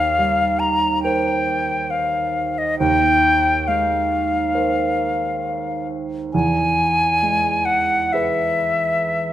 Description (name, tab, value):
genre	classical, impressionist duo for flute and grand piano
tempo	62-70 BPM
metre	4/4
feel	rubato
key	unclear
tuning	A4 = 440 Hz
part	silver concert flute	melody	0.0-9.3 s	D#5 to A#5	-18 LUFS	left 2 dB	none
part	dark baby grand piano	accompaniment	0.0-9.3 s	D#2 to B#4	-22 LUFS	right 4 dB	none
room	wet recital hall reverb, RT60 1.7 s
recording	none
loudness	-17 LUFS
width	side -12 dB against mid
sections	0.0-9.3 A section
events	none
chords	0.0 D#69; 2.8 A#sus2/D#; 6.3 E